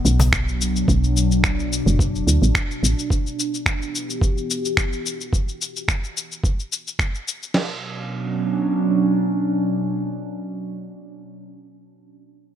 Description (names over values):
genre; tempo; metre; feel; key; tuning
organic downtempo; 108 BPM; 4/4; swing 53% on 16ths; B minor; A4 = 440 Hz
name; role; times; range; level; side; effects
warbly tape-like pad; sustained chords; 0.0-10.5 s; B2 to G4; -23 LUFS; right 1 dB; chorus, built-in reverb, phaser, sidechain pumping
woody FM bass; bass; 0.0-2.9 s; F#1 to D2; -19 LUFS; equal; none
sub drop; sound effects; 0.0-0.9 s; none; barely audible; none; none
electronic cabasa and finger snaps; drums; 0.1-7.5 s; none; -24 LUFS; left 2 dB; none
dusty soul sampler-style drum kit; drums; 0.3-7.7 s; crash cymbal, kick drum, snare drum; -22 LUFS; equal; none
room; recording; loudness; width
moderate lush hall reverb, RT60 1.8 s; none; -19 LUFS; side -10 dB against mid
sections
0.0-7.5 A section; 7.5-9.8 B section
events
impact 0.0-0.9; filter sweep on FM bass 0.0-3.1; filter sweep on ambient pad 0.0-5.3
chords
0.0 Bm; 3.1 Emadd9/B; 7.5 Bm